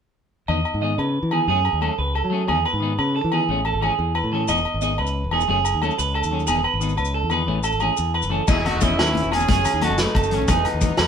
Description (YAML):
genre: highlife guitar band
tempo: 120 BPM (dotted quarters)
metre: 12/8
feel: straight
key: E major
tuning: A4 = 440 Hz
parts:
  - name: electric guitar at the edge of break-up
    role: accompaniment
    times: 0.5-10.9 s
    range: D#3 to G#4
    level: -28 LUFS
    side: left 7 dB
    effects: spring reverb
  - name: clean electric guitar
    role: arpeggios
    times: 0.5-11.1 s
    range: G#4 to D#5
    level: -23 LUFS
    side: right 6 dB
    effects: none
  - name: modern bright fingered electric bass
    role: bass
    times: 0.5-11.1 s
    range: E1 to F#3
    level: -24 LUFS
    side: equal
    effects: none
  - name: agogo bells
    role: percussion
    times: 0.5-11.1 s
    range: none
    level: -30 LUFS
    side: left 6 dB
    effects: none
  - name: maracas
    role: percussion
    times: 4.5-10.9 s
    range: none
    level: -34 LUFS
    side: left 6 dB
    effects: none
  - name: bright horn section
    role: melody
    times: 8.5-11.1 s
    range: A3 to G#4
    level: -24 LUFS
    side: left 1 dB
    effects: tape echo
  - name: vintage drum kit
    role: drums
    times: 8.5-11.1 s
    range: crash cymbal, hi-hat, kick drum, snare drum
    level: -22 LUFS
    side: equal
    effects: none
  - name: congas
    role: percussion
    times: 8.5-11.0 s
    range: none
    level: -28 LUFS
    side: left 5 dB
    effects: none
room: moderate studio reverb, RT60 0.6 s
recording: band playing live in one room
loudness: -19 LUFS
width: side -7 dB against mid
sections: 0.5-8.5 A section; 8.5-11.1 B section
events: none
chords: 0.5 Emaj7; 1.5 F#madd9; 2.5 Emaj7; 3.5 Amaj7; 4.5 Emaj7; 5.5 F#madd9; 6.5 Emaj7; 7.5 Amaj7; 8.5 Emaj7; 9.5 F#madd9; 10.5 Emaj7